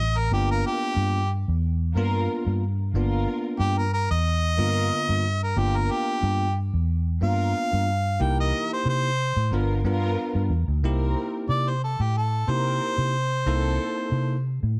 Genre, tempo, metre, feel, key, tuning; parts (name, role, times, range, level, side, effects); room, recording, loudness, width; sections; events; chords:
blues; 91 BPM; 4/4; swing 55% on 16ths; C mixolydian; A4 = 440 Hz
clear harmonica; melody; 0.0-14.4 s; G4 to G5; -29 LUFS; equal; overdrive
vintage muted fingered electric bass; bass; 0.0-14.8 s; G1 to C3; -26 LUFS; equal
bell-like tine electric piano; accompaniment; 0.3-14.4 s; D3 to A#4; -32 LUFS; equal
dark studio string section; sustained chords; 0.3-14.1 s; E3 to A#4; -38 LUFS; equal
small room ambience; -25 LUFS; mono
0.0-10.8 A section; 10.8-14.8 A section
harmonica solo 0.0-10.8, 10.8-14.8
0.3 G7#9; 8.2 C7#9; 9.5 G7#9; 10.8 C7#9